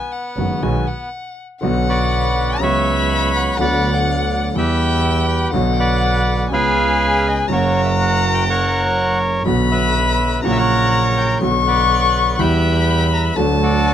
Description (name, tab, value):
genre	tango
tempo	122 BPM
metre	4/4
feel	rubato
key	B harmonic minor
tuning	A4 = 436 Hz
part	bandoneon	melody	0.0-13.9 s	B3 to B5	-19 LUFS	right 1 dB	none
part	warm violin	second line	0.0-13.9 s	F#5 to C#6	-21 LUFS	left 6 dB	none
part	clear concert grand piano	accompaniment	0.4-13.9 s	F#1 to G4	-20 LUFS	equal	none
part	clear double bass	bass	0.4-13.9 s	F#1 to E2	-20 LUFS	right 2 dB	none
room	light reverb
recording	close, detailed microphones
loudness	-14 LUFS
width	side -10 dB against mid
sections	0.0-1.6 A section; 1.6-13.9 B section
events	none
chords	0.0 B6; 1.6 Bm; 2.6 F#sus4/C#; 3.6 Bm/D; 4.6 Em; 5.5 Bm; 6.5 C#7; 7.5 F#; 9.5 Bm; 10.4 F#/A#; 11.4 Bm; 12.4 Em; 13.4 D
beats	0.13 0.63 1.13 | 1.62 2.12 2.61 3.10 | 3.59 4.08 4.56 5.05 | 5.54 6.03 6.51 7.00 | 7.49 7.98 8.47 8.96 | 9.45 9.95 10.44 10.93 | 11.42 11.91 12.40 12.89 | 13.37 13.86